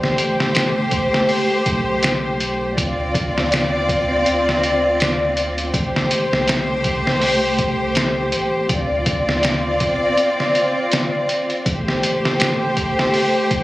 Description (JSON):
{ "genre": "trip hop", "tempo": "81 BPM", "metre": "4/4", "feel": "swing 56% on 16ths", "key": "D dorian", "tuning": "A4 = 439 Hz", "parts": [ { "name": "warm studio string section", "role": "sustained chords", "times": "0.0-13.6 s", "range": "A3 to D5", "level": "-18 LUFS", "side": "equal", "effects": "none" }, { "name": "soft dub sub bass", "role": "bass", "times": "0.0-13.6 s", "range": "A1 to D2", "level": "-27 LUFS", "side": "equal", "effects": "none" }, { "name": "trip hop sampler-style drum kit", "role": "drums", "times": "0.0-13.6 s", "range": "hi-hat, kick drum, snare drum", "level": "-21 LUFS", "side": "equal", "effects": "studio reverb" } ], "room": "moderate spring reverb, RT60 2.8 s", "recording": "recorded on a phone in the room, club reverb", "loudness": "-16 LUFS", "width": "side -17 dB against mid", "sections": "0.0-13.6 A section", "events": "none", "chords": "0.0 Am7; 2.8 Dm7; 5.7 Am7; 8.7 Dm7; 11.7 Am7" }